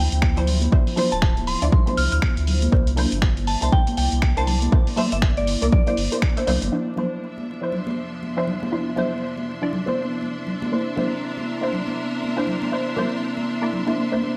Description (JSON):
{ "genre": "deep house", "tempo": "120 BPM", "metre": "4/4", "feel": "swing 60% on 16ths", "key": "D minor", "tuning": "A4 = 440 Hz", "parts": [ { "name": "soft synth bell", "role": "melody", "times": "0.0-5.9 s", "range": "D5 to F6", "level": "-30 LUFS", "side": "equal", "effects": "chorus, delay" }, { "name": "deep dark ambient pad", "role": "sustained chords", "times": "0.0-14.4 s", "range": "F3 to D5", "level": "-36 LUFS", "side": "equal", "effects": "chorus, built-in reverb, vintage 12-bit sampler grit, sidechain pumping" }, { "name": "filtered dub chord stab", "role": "stabs", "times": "0.0-14.3 s", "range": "F3 to D5", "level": "-29 LUFS", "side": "equal", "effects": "phaser, lush chorus, sidechain pumping, dub echo" }, { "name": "warm sub bass", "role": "bass", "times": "0.0-6.7 s", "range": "D1 to D2", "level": "-25 LUFS", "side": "equal", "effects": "sidechain pumping" }, { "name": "dusty soul sampler-style drum kit", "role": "drums", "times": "0.1-6.7 s", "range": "finger snaps, hi-hat", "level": "-31 LUFS", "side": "equal", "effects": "none" }, { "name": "electronic kick drum", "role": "drums", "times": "0.2-6.3 s", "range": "none", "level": "-21 LUFS", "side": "equal", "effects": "overdrive" }, { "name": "congas", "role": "percussion", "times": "0.2-14.3 s", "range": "none", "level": "-30 LUFS", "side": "equal", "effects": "sidechain pumping on perc" }, { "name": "bright studio string section", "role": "texture", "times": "6.7-14.4 s", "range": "F3 to C6", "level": "-33 LUFS", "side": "equal", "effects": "sidechain pumping" } ], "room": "light reverb", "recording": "vinyl crackle", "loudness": "-22 LUFS", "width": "mono", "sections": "0.0-6.7 A section; 6.7-14.4 B section", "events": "filter sweep on ambient pad 6.7-14.4", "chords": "0.0 Dm9; 2.7 C9; 6.7 Dm9; 10.7 C9", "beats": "0.22 | 0.72 1.22 1.72 2.22 | 2.72 3.22 3.72 4.22 | 4.72 5.22 5.72 6.22 | 6.72 7.22 7.72 8.22 | 8.72 9.22 9.72 10.22 | 10.72 11.22 11.72 12.22 | 12.72 13.22 13.72 14.22" }